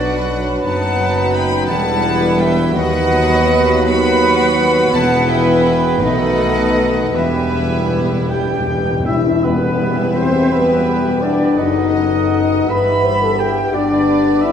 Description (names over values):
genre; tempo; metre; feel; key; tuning
classical, slow romantic movement for symphony orchestra; 51-60 BPM (dotted quarters); 6/8; rubato; E minor; A4 = 443 Hz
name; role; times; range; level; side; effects
warm symphonic violin section; melody; 0.0-14.5 s; B4 to B5; -26 LUFS; left 2 dB; none
bright concert flute; second line; 0.0-14.5 s; B4 to B5; -24 LUFS; left 1 dB; none
dark clarinet; second line; 0.0-14.5 s; D4 to G5; -28 LUFS; left 1 dB; none
warm oboe; second line; 0.0-14.5 s; B4 to B5; -28 LUFS; right 4 dB; none
warm symphonic violin section; second line; 0.0-14.5 s; D#4 to E5; -25 LUFS; left 1 dB; none
dark symphonic viola section; accompaniment; 0.0-14.5 s; E3 to A4; -25 LUFS; right 2 dB; none
warm bassoon; accompaniment; 0.0-14.5 s; F#3 to B3; -26 LUFS; right 3 dB; none
mellow French horn section; sustained chords; 0.0-14.5 s; D#3 to C5; -19 LUFS; left 3 dB; none
concert harp; arpeggios; 0.0-14.5 s; F#2 to B5; -25 LUFS; left 7 dB; none
dark trumpet section; stabs; 0.0-14.5 s; G4 to B5; -22 LUFS; right 2 dB; none
rich symphonic double bass section; bass; 0.0-14.5 s; E1 to D#2; -25 LUFS; right 3 dB; none
warm symphonic cello section; bass; 0.0-14.5 s; D#2 to B2; -26 LUFS; right 2 dB; none
warm tuba; bass; 0.0-9.2 s; E1 to D#2; -23 LUFS; right 4 dB; none
timpani; percussion; 4.9-9.4 s; E2; -25 LUFS; left 1 dB; none
tam-tam; percussion; 9.4-12.3 s; none; -28 LUFS; left 2 dB; none
room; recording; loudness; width
wet recital hall reverb, RT60 1.4 s; none; -13 LUFS; side -8 dB against mid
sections
0.0-9.4 A section; 9.4-14.5 B section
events
timpani fill 7.1-9.4; band accent 9.4-10.2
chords
0.0 Bm; 0.7 B7/F#; 1.7 Em; 2.8 B/D#; 4.9 Em; 6.0 B7; 7.1 Em; 11.6 B7/F#; 12.7 Em/G; 13.7 G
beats
| 0.66 1.70 | 2.75 3.87 | 4.93 6.02 | 7.14 8.31 | 9.44 10.52 | 11.57 12.70 | 13.74